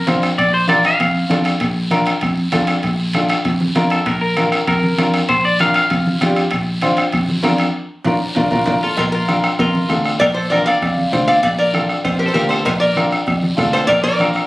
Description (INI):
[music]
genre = latin, cumbia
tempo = 195 BPM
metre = 4/4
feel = straight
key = Bb major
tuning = A4 = 440 Hz
[part]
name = semi-hollow electric guitar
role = second line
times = 0.0-1.4, 3.9-6.3, 8.8-14.5 s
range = F4 to F5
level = -19 LUFS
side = left 1 dB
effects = none
[part]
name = bright upright piano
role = accompaniment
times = 0.1-14.4 s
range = D4 to C5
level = -20 LUFS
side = left 1 dB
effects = none
[part]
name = fingered electric bass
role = bass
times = 0.1-14.4 s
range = Bb1 to F2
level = -20 LUFS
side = equal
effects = none
[part]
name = bombo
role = percussion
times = 0.1-14.5 s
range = none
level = -22 LUFS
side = equal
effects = none
[part]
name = congas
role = percussion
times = 0.1-14.3 s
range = none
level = -24 LUFS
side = equal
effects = none
[part]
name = guiro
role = percussion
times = 0.1-14.5 s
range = none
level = -28 LUFS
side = equal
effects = none
[part]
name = timbales and cowbell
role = percussion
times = 0.1-14.0 s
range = none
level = -28 LUFS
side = right 2 dB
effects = none
[part]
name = nylon-string guitar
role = melody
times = 8.8-14.5 s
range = A4 to F5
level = -18 LUFS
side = equal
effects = plate reverb
[sound]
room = moderate studio reverb, RT60 0.7 s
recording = recorded on a phone in the room, studio reverb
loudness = -14 LUFS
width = side -18 dB against mid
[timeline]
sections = 0.0-9.0 A section; 9.0-14.5 B section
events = clean electric guitar solo 0.0-9.0; band accent 7.7-9.0; drum fill 8.2-9.0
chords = 0.0 Bb